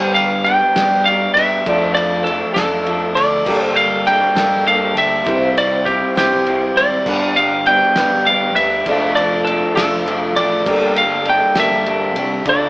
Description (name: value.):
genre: folk rock and heartland rock.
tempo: 67 BPM (dotted quarters).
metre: 6/8.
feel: straight.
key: unclear.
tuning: A4 = 439 Hz.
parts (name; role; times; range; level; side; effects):
lightly driven lead guitar; melody; 0.0-12.7 s; G4 to G5; -15 LUFS; equal; none.
picked twelve-string acoustic guitar; accompaniment; 0.0-12.7 s; C3 to C5; -22 LUFS; left 1 dB; none.
warm upright piano; accompaniment; 0.0-12.7 s; Bb3 to D5; -28 LUFS; equal; none.
mellow tonewheel organ; sustained chords; 0.0-12.7 s; Bb3 to B4; -30 LUFS; equal; none.
electric guitar through a small old amp; riff; 0.0-12.7 s; G2 to A4; -22 LUFS; equal; none.
fingered electric bass; bass; 0.0-12.7 s; F1 to G2; -29 LUFS; equal; none.
cloth-damped thuddy drum kit; drums; 0.2-12.6 s; crash cymbal, kick drum, ride cymbal, snare drum; -22 LUFS; equal; none.
room: moderate studio reverb, RT60 0.6 s.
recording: band playing live in one room, AM radio sound.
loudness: -13 LUFS.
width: side -25 dB against mid.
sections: 0.0-12.7 A section.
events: none.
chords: 0.0 G; 1.7 Dm/F; 3.5 Gmadd9; 5.3 C; 7.1 G; 8.9 Dm/F; 10.7 Gmadd9.